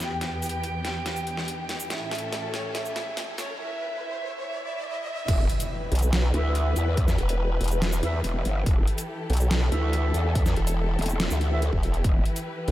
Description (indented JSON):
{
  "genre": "heavy wobble dubstep",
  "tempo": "142 BPM",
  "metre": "4/4",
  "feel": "half-time",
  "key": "E minor",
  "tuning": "A4 = 440 Hz",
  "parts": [
    { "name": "dark studio violin section", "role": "melody", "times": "0.0-5.3 s", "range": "C#4 to G5", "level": "-34 LUFS", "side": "right 2 dB", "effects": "analog delay" },
    { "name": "dark symphonic string section", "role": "sustained chords", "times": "0.0-12.7 s", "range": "E2 to B4", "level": "-33 LUFS", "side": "left 2 dB", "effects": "sidechain pumping, low-pass filter" },
    { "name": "dubstep drum kit", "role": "drums", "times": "0.0-12.7 s", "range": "crash cymbal, hi-hat, shaker, snare drum", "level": "-33 LUFS", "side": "equal", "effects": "overdrive, high-pass filter on hats, high-pass filter on snare, high-pass filter on toms, high-pass filter on perc, high-pass filter on cymbals, high-pass filter on room" },
    { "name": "riser, swell and impact", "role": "sound effects", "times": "0.8-7.0 s", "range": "none", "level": "-38 LUFS", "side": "equal", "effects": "none" },
    { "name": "growl bass", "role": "bass", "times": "5.3-12.2 s", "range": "E1 to E2", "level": "-24 LUFS", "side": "equal", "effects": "chorus, overdrive" },
    { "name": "electronic kick drum", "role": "drums", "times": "5.3-12.1 s", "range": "none", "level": "-24 LUFS", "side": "equal", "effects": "none" },
    { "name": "formant-sweep wobble bass", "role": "bass", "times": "5.9-12.7 s", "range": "E1 to B1", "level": "-23 LUFS", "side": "equal", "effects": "chorus, overdrive" },
    { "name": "dark brass ensemble", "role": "stabs", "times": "6.3-11.6 s", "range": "E4 to E5", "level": "-36 LUFS", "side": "right 2 dB", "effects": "analog delay" }
  ],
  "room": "light reverb",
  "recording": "high-pass filter",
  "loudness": "-24 LUFS",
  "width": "side -15 dB against mid",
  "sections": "0.0-5.3 A section; 5.3-12.7 B section",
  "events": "build-up 0.0-5.3; drum fill 0.0-3.6; filter sweep on string section 0.0-5.3; riser 0.8-5.3; swell 4.4-5.3; drop 5.3-12.7; impact 5.3-7.0",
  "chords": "0.0 Em; 1.9 A; 5.3 Em"
}